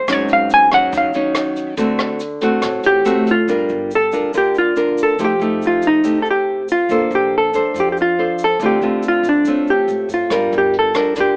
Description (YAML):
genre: bossa nova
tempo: 141 BPM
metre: 4/4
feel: straight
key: G minor from 3.5 s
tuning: A4 = 440 Hz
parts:
  - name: hollow-body jazz guitar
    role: melody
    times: 0.0-11.4 s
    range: D4 to Ab5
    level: -18 LUFS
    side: equal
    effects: none
  - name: nylon-string guitar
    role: accompaniment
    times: 0.0-11.4 s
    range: Ab2 to C5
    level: -21 LUFS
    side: equal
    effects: none
  - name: upright bass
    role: bass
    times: 0.1-11.4 s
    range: F1 to A2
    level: -37 LUFS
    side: equal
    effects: none
  - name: jazz brush drum kit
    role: drums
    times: 0.1-3.4, 10.3-11.3 s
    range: hi-hat, kick drum, rim click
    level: -27 LUFS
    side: equal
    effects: none
  - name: egg shaker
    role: percussion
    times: 0.1-11.4 s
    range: none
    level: -46 LUFS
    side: equal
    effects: none
room: light reverb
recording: AM radio sound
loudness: -16 LUFS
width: mono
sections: 0.0-3.5 A section; 3.5-11.4 B section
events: hollow-body jazz guitar solo 0.0-3.5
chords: 0.1 Ab7sus4; 1.8 D7; 3.5 Gm7; 5.2 F9; 6.9 Bbmaj9; 8.6 Dm7; 10.3 Gm7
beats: | 0.08 0.51 0.93 1.36 | 1.78 2.21 2.63 3.06 | 3.49 3.91 4.34 4.76 | 5.19 5.62 6.04 6.47 | 6.90 7.32 7.75 8.18 | 8.60 9.03 9.46 9.88 | 10.31 10.73 11.16